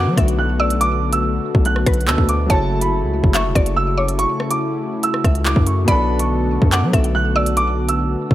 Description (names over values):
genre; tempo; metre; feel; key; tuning
hip hop, drill; 142 BPM; 4/4; half-time; unclear; A4 = 439 Hz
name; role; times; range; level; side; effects
dark concert grand piano; melody; 0.0-8.3 s; A5 to F#6; -22 LUFS; right 3 dB; none
mallet-like synth pluck; second line; 0.0-7.6 s; B4 to F#5; -27 LUFS; left 3 dB; chorus, tape echo
warm concert grand piano; accompaniment; 0.0-8.3 s; B2 to A4; -26 LUFS; left 1 dB; none
warm analog pad; sustained chords; 0.0-8.3 s; C#3 to F#4; -24 LUFS; left 2 dB; chorus
hard-hitting 808-style bass; bass; 0.0-8.3 s; E1 to F#3; -20 LUFS; equal; none
drill drum kit; drums; 0.2-8.3 s; handclaps, hi-hat, kick drum, rim click; -18 LUFS; equal; none
room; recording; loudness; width
digital ambience; none; -15 LUFS; side -14 dB against mid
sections
0.0-8.3 A section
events
none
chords
0.0 Bm7; 2.5 F#m7; 5.9 Bm7